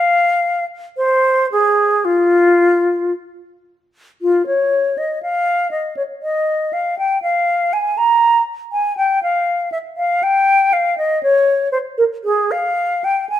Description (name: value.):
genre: classical, baroque-style fantasia for unaccompanied flute.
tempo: 54-61 BPM.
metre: 4/4.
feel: rubato.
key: F minor.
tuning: A4 = 439 Hz.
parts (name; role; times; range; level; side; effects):
concert flute; solo; 0.0-13.4 s; F4 to Bb5; -14 LUFS; left 1 dB; none.
room: moderate stone room reverb, RT60 1.2 s.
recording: heard from further back in the room.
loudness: -14 LUFS.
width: side -11 dB against mid.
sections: 0.0-4.2 A section; 4.2-13.4 B section.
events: none.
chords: none.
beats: 0.95 2.03 3.12 | 4.20 5.22 6.22 7.23 | 8.23 9.23 10.23 11.22 | 12.25 13.28.